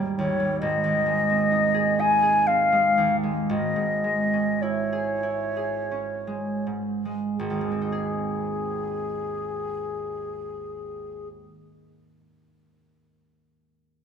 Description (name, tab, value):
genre	classical, romantic duo for flute and harp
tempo	38-70 BPM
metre	3/4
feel	rubato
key	Ab major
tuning	A4 = 439 Hz
part	concert harp	accompaniment	0.0-11.8 s	Ab1 to Ab4	-27 LUFS	right 4 dB	none
part	mellow concert flute	melody	0.2-11.3 s	Ab4 to Ab5	-24 LUFS	left 2 dB	none
room	moderate recital hall reverb, RT60 1.6 s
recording	none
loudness	-22 LUFS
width	side -7 dB against mid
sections	0.0-7.4 A section; 7.4-11.4 B section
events	slowing down 0.0-7.4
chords	0.0 Eb7/Ab; 0.6 Ab; 3.5 Dbm/Ab; 7.4 Ab